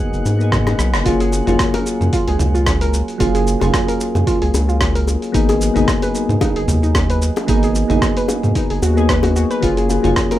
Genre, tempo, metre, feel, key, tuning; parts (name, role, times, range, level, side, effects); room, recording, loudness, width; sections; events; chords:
sunset chillout; 112 BPM; 4/4; swing 55% on 16ths; F# major; A4 = 440 Hz
nylon-string guitar; melody; 0.0-0.5 s; barely audible
soft electric-piano-like synth keys; accompaniment; 0.0-10.4 s; F#3 to G#4; -19 LUFS; moving between left 4 dB and right 4 dB; chorus, tremolo, auto-pan, ping-pong delay
lush unison pad; sustained chords; 0.0-1.0 s; G#3 to G#4; -40 LUFS; equal
drifting glass-harmonics texture; texture; 0.0-1.1 s; F#5 to F#6; -36 LUFS; right 6 dB; chorus, built-in reverb, plate reverb
round analog bass; bass; 0.1-10.1 s; F#1 to G#2; -18 LUFS; equal
dusty soul sampler-style drum kit; drums; 0.1-10.4 s; hi-hat, rim click, shaker, toms; -23 LUFS; right 1 dB
bongos; percussion; 0.3-10.4 s; -25 LUFS; left 4 dB
electronic kick drum; drums; 0.5-10.3 s; -22 LUFS; equal
soft round pluck; arpeggios; 1.1-10.4 s; D#4 to B4; -23 LUFS; right 1 dB; chorus, ping-pong delay, plate reverb
moderate studio ambience, RT60 0.5 s; rough home demo mix; -14 LUFS; side -13 dB against mid
0.0-1.1 A section; 1.1-10.4 B section
drum fill 0.7-1.1; band accent 0.9
0.0 G#m7; 1.1 F#maj9; 5.3 G#m7; 9.6 F#maj9